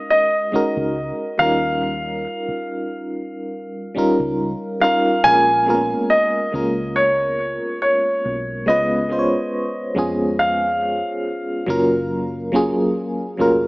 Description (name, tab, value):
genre	contemporary R&B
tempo	70 BPM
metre	4/4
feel	swing 54% on 16ths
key	unclear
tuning	A4 = 441 Hz
part	warm grand piano	melody	0.0-11.6 s	C#5 to G#5	-18 LUFS	equal	tape echo
part	FM electric piano with tremolo	accompaniment	0.0-13.7 s	F#3 to C#5	-20 LUFS	equal	phaser
part	vintage muted fingered electric bass	bass	0.5-13.7 s	E#1 to E#2	-32 LUFS	equal	none
room	moderate lush hall reverb, RT60 2.9 s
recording	small speaker sound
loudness	-17 LUFS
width	side -23 dB against mid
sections	0.0-5.2 A section; 5.2-13.7 B section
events	none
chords	0.0 F#69; 1.4 D#9; 5.2 A#m7; 8.7 C#7; 11.7 F#maj7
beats	0.10 0.96 | 1.82 2.67 3.53 4.39 | 5.25 6.10 6.96 7.82 | 8.67 9.53 10.39 11.24 | 12.10 12.96